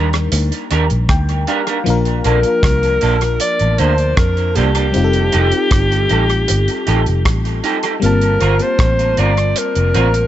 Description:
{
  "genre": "lovers rock reggae",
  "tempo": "78 BPM",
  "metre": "4/4",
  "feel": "straight",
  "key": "Bb major",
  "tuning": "A4 = 444 Hz",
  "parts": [
    { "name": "FM electric piano", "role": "accompaniment", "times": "0.0-10.3 s", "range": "F3 to A5", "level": "-21 LUFS", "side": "left 5 dB", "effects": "chorus, tape echo" },
    { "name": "electric guitar through a small old amp", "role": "stabs", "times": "0.0-10.1 s", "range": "Bb3 to Bb4", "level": "-21 LUFS", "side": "right 5 dB", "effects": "analog chorus, tape echo" },
    { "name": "vintage muted fingered electric bass", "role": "bass", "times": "0.0-10.3 s", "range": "F1 to F2", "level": "-16 LUFS", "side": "equal", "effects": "none" },
    { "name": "damped 70s drum kit", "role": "drums", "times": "0.1-10.3 s", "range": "hi-hat, kick drum, rim click", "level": "-20 LUFS", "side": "equal", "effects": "tape echo" },
    { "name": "warm alto saxophone", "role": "melody", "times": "2.3-10.3 s", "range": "G4 to D5", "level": "-18 LUFS", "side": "equal", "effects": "tape echo" }
  ],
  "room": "studio ambience",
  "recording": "nothing above 8.0 kHz",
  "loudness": "-13 LUFS",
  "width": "side -12 dB against mid",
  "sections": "0.0-10.3 A section",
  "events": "FM electric piano fill 0.7-1.9",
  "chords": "0.0 Ebmaj7; 1.9 Bbmaj7; 4.9 F9; 8.0 Gm11"
}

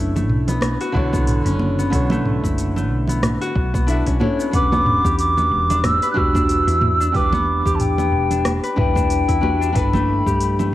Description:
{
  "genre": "sunset chillout",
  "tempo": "92 BPM",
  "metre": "4/4",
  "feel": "swing 57% on 16ths",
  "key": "B minor",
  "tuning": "A4 = 440 Hz",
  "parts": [
    { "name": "nylon-string guitar", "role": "accompaniment", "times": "0.0-10.7 s", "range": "D3 to G5", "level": "-24 LUFS", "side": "moving between left 3 dB and right 4 dB", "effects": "auto-pan, cassette tape" },
    { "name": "concert harp", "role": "arpeggios", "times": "0.0-10.7 s", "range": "A3 to B4", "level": "-25 LUFS", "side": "left 3 dB", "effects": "cassette tape, tape echo" },
    { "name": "woody fretless electric bass", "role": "bass", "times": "0.0-10.7 s", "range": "E1 to G2", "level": "-22 LUFS", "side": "equal", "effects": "none" },
    { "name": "smooth R&B drum kit", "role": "drums", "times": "0.2-10.7 s", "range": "hi-hat, rim click, shaker, toms", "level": "-26 LUFS", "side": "equal", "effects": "none" },
    { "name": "congas", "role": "percussion", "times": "0.2-10.7 s", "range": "none", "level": "-26 LUFS", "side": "right 2 dB", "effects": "none" },
    { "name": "electronic kick drum", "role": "drums", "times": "0.9-10.4 s", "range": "none", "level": "-23 LUFS", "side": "equal", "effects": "none" },
    { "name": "mellow hollow silver concert flute", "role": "melody", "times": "4.5-10.7 s", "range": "G5 to F#6", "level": "-20 LUFS", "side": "equal", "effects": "vintage 12-bit sampler grit, tape echo" }
  ],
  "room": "light reverb, small room ambience",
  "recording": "home recording on cassette",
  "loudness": "-16 LUFS",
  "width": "side -14 dB against mid",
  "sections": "0.0-10.7 A section",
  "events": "none",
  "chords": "0.0 Bm11; 4.5 Em9; 9.8 G69"
}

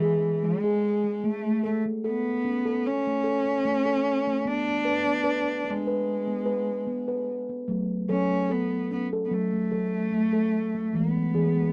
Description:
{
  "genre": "world meditative, meditative tuned percussion",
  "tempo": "74 BPM",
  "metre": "4/4",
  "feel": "swing 54% on 16ths",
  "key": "F# minor",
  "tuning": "A4 = 439 Hz",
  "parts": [
    { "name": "dark cello", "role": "melody", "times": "0.0-11.7 s", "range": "E3 to D4", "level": "-29 LUFS", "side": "equal", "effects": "none" },
    { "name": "steel tongue drum", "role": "arpeggios", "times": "0.0-11.7 s", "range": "E3 to B4", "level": "-29 LUFS", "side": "equal", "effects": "none" }
  ],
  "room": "moderate booth ambience, RT60 0.2 s",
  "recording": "dark, warm production",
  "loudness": "-26 LUFS",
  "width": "mono",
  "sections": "0.0-11.7 A section",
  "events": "none",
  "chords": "0.0 E; 1.2 Aadd9; 4.4 Bm; 7.7 F#m; 10.9 E"
}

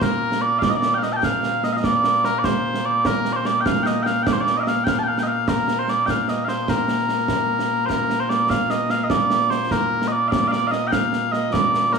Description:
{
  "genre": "scottish traditional, Scottish pipe music",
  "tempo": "99 BPM (dotted quarters)",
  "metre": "6/8",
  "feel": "straight",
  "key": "Bb major",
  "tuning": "A4 = 440 Hz",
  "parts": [
    { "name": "mellow small bagpipes", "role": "melody", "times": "0.0-12.0 s", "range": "Bb2 to A5", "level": "-19 LUFS", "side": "equal", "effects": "none" },
    { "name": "concert snare drum and concert bass drum", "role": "drums", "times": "0.0-12.0 s", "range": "none", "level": "-24 LUFS", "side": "right 2 dB", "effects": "none" }
  ],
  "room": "moderate recital hall reverb, RT60 1.4 s",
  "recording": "studio reverb",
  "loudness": "-18 LUFS",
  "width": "side -5 dB against mid",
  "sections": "0.0-7.9 A section; 7.9-12.0 A section",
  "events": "none",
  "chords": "none"
}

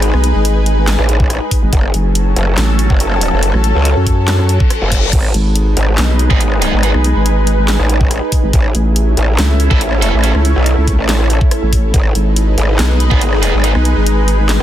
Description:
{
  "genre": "heavy wobble dubstep",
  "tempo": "141 BPM",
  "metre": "4/4",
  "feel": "half-time",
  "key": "G# phrygian",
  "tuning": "A4 = 440 Hz",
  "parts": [
    { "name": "lush unison pad", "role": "sustained chords", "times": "0.0-14.6 s", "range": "F#3 to B4", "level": "-21 LUFS", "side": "equal", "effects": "chorus, phaser, sidechain pumping" },
    { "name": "growl bass", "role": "bass", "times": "0.0-14.6 s", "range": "F#1 to C#2", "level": "-14 LUFS", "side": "equal", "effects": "chorus, overdrive" },
    { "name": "dubstep drum kit", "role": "drums", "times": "0.0-14.6 s", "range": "crash cymbal, handclaps, hi-hat, rim click, snare drum", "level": "-20 LUFS", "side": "equal", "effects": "none" },
    { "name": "ethereal airy pad", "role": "texture", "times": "0.0-14.6 s", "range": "D#4 to A5", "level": "-21 LUFS", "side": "equal", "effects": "ensemble chorus, built-in reverb, sidechain pumping" },
    { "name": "vowel-sweep wobble bass", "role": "bass", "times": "0.1-14.6 s", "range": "F#1 to F#2", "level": "-12 LUFS", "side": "equal", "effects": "chorus, overdrive" },
    { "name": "electronic kick drum", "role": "drums", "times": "1.2-13.2 s", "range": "none", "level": "-13 LUFS", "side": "equal", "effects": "none" },
    { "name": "reverse cymbal", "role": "sound effects", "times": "4.5-5.1 s", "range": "none", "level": "-21 LUFS", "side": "left 5 dB", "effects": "none" },
    { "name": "sludgy distorted guitar", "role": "stabs", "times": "6.3-6.9, 9.7-10.3, 13.1-13.7 s", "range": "B3 to A4", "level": "-21 LUFS", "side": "right 3 dB", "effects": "overdrive, tape echo" }
  ],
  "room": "digital ambience",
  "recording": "dense, heavily limited modern master",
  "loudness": "-10 LUFS",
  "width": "side -12 dB against mid",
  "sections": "0.0-14.6 A section",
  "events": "reverse cymbal 4.5-5.1",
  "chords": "0.0 G#m; 1.7 F#m; 5.1 G#m; 8.5 A; 11.9 G#m"
}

